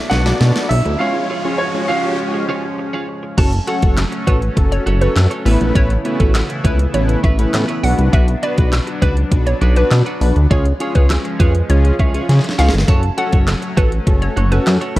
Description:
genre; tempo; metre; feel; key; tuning
dance-pop; 101 BPM; 4/4; straight; F# minor; A4 = 438 Hz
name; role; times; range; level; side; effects
bright grand piano; melody; 0.0-2.4 s; C#5 to F#5; -22 LUFS; right 2 dB; dub echo
chorused pulse-width pad; sustained chords; 0.0-15.0 s; C#3 to E4; -26 LUFS; equal; sidechain pumping
riser; sound effects; 0.0-2.2 s; none; -26 LUFS; right 1 dB; none
twelve-string electric guitar; riff; 0.1-15.0 s; C#4 to C#5; -27 LUFS; right 4 dB; lush chorus
chorused synth bass; bass; 0.1-15.0 s; F#1 to C#3; -15 LUFS; equal; sidechain pumping
pop drum kit; drums; 0.1-15.0 s; crash cymbal, handclaps, hi-hat, kick drum, snare drum; -17 LUFS; equal; overdrive
big bright polysynth; accompaniment; 0.3-15.0 s; G#3 to D5; -23 LUFS; left 1 dB; none
hollow square pluck; melody; 3.4-14.7 s; A4 to A5; -24 LUFS; equal; chorus, dub echo
room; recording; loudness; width
light reverb; worn, warbling old tape, cassette tape, warbly pitch drift; -13 LUFS; side -17 dB against mid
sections
0.0-3.4 A section; 3.4-15.0 B section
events
build-up 0.0-3.4; drum fill 0.0-1.0, 12.3-12.9; riser 0.0-3.4; break 1.0-3.4; drop 3.4-15.0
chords
0.0 Bm; 1.0 C#; 3.4 F#m; 5.5 Aadd9; 7.8 Bm; 10.5 C#; 12.9 F#m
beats
0.41 | 1.00 1.60 2.19 2.79 | 3.38 3.97 4.57 5.16 | 5.75 6.35 6.94 7.54 | 8.13 8.72 9.32 9.91 | 10.51 11.10 11.70 12.29 | 12.88 13.48 14.07 14.67

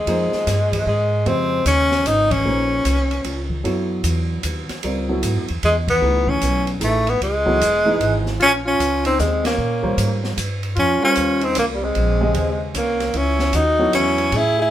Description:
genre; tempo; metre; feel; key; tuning
modal jazz; 151 BPM; 3/4; swing 64% on 8ths; Bb dorian; A4 = 441 Hz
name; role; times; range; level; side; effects
breathy tenor saxophone; melody; 0.0-3.5, 5.6-14.7 s; G3 to Fb4; -18 LUFS; left 1 dB; none
upright bass; bass; 0.0-14.7 s; Fb1 to Bb2; -22 LUFS; equal; none
dark baby grand piano; accompaniment; 0.1-14.3 s; Db3 to Eb5; -25 LUFS; right 1 dB; none
open jazz drum kit; drums; 0.1-14.4 s; hi-hat, kick drum, ride cymbal, snare drum; -28 LUFS; right 1 dB; none
clear alto saxophone; second line; 8.4-14.7 s; Bb3 to Ab4; -26 LUFS; equal; none
room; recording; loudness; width
moderate studio reverb, RT60 0.5 s; band playing live in one room; -17 LUFS; side -12 dB against mid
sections
0.0-14.7 A section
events
band accent 2.3, 5.8, 9.4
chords
0.0 Bbm11; 3.6 Gbm11; 8.4 Bbm11; 13.1 Gbm11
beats
| 0.07 0.47 0.87 | 1.26 1.66 2.06 | 2.45 2.85 3.25 | 3.64 4.04 4.44 | 4.83 5.23 5.62 | 6.02 6.42 6.81 | 7.21 7.61 8.00 | 8.40 8.80 9.19 | 9.59 9.98 10.38 | 10.78 11.17 11.57 | 11.96 12.36 12.75 | 13.15 13.54 13.94 | 14.33

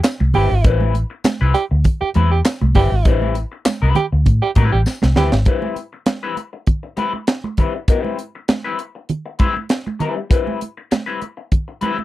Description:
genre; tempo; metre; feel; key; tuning
funk; 99 BPM; 4/4; straight; unclear; A4 = 440 Hz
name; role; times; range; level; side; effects
electric guitar at the edge of break-up; accompaniment; 0.0-12.0 s; G3 to B4; -23 LUFS; left 6 dB; wah, vibrato effect
tight funk drum kit; drums; 0.0-12.0 s; handclaps, hi-hat, kick drum, snare drum; -16 LUFS; equal; none
congas; percussion; 0.0-12.0 s; none; -25 LUFS; right 4 dB; none
tambourine; percussion; 0.0-5.0 s; none; -35 LUFS; left 5 dB; none
vintage muted fingered electric bass; bass; 0.2-5.4 s; G1 to A2; -16 LUFS; equal; none
warm tenor saxophone; second line; 0.3-5.4 s; G4; -19 LUFS; right 6 dB; none
room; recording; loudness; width
little or no reverb; dry, close 1970s-style studio recording; -16 LUFS; side -16 dB against mid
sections
0.0-5.5 A section; 5.5-12.0 B section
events
drum fill 4.9-5.5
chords
0.0 Am9; 5.5 Gadd11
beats
0.05 | 0.65 1.25 1.85 2.46 | 3.06 3.66 4.26 4.86 | 5.47 6.07 6.67 7.28 | 7.88 8.49 9.09 9.70 | 10.30 10.91 11.51

